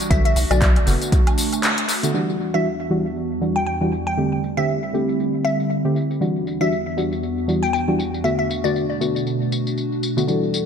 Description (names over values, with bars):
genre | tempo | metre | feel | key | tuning
deep house | 118 BPM | 4/4 | swing 58% on 16ths | E minor | A4 = 441 Hz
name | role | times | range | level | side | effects
warbly tape-like pad | sustained chords | 0.0-10.7 s | E2 to F#4 | -25 LUFS | right 1 dB | chorus, built-in reverb, phaser, vintage 12-bit sampler grit, sidechain pumping
deep house drum kit | drums | 0.0-10.7 s | handclaps, hi-hat, tambourine, woodblock | -25 LUFS | equal | overdrive, low-pass filter on hats, low-pass filter on perc, low-pass filter on snare, analog delay
glassy wavetable pluck | melody | 0.1-9.3 s | D5 to G5 | -26 LUFS | left 1 dB | chorus, analog delay
deep mellow chord stab | stabs | 0.1-10.6 s | D3 to G4 | -23 LUFS | equal | chorus, sidechain pumping, analog delay
rubbery square bass | bass | 0.1-1.0 s | F#1 to B1 | -19 LUFS | equal | tube saturation, sidechain pumping
electronic kick drum | drums | 0.1-1.2 s | none | -18 LUFS | equal | overdrive
marimba with soft mallets | melody | 10.3-10.7 s | A4 | -25 LUFS | left 4 dB | none
room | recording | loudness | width
moderate plate reverb, RT60 2.1 s | echo-heavy mix | -18 LUFS | side -7 dB against mid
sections
0.0-2.1 A section; 2.1-10.7 B section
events
band accent 1.6; filter sweep on drum 2.1-10.7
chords
0.1 Bm7; 2.1 Em9; 4.2 D7sus4; 6.2 Em9; 8.2 Bm7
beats
| 0.11 0.61 1.12 1.63 | 2.14 2.65 3.16 3.67 | 4.17 4.68 5.19 5.70 | 6.21 6.72 7.22 7.73 | 8.24 8.75 9.26 9.77 | 10.28